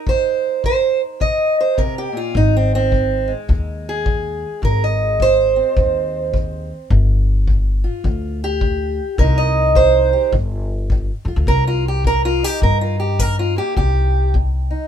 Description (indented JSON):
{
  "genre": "acoustic country blues, solo or duo",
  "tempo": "105 BPM",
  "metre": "4/4",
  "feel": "swing 63% on 8ths",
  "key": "C minor",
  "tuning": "A4 = 441 Hz",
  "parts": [
    { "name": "fingerpicked acoustic archtop guitar", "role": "melody", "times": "0.0-14.9 s", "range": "Eb2 to Eb5", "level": "-18 LUFS", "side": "right 2 dB", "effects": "none" },
    { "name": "kick drum", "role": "drums", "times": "0.1-14.5 s", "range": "none", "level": "-20 LUFS", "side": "left 2 dB", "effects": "none" },
    { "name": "upright bass", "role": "bass", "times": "2.3-14.7 s", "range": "G1 to G2", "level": "-18 LUFS", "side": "left 1 dB", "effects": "none" }
  ],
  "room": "moderate booth ambience, RT60 0.2 s",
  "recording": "minimal, uncompressed stereo recording",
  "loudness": "-15 LUFS",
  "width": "side -9 dB against mid",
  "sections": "0.0-11.5 A section; 11.5-14.9 A section",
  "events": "steel-string acoustic guitar solo 0.0-14.9",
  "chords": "0.0 Cm7; 2.4 Ab; 6.9 G5; 9.2 Cm; 10.3 G5; 11.5 Cm7",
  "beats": "| 0.07 0.64 1.21 1.78 | 2.35 2.92 3.49 4.06 | 4.63 5.20 5.77 6.34 | 6.91 7.47 8.04 8.61 | 9.18 9.75 10.32 10.90 | 11.47 12.04 12.61 13.19 | 13.76 14.34"
}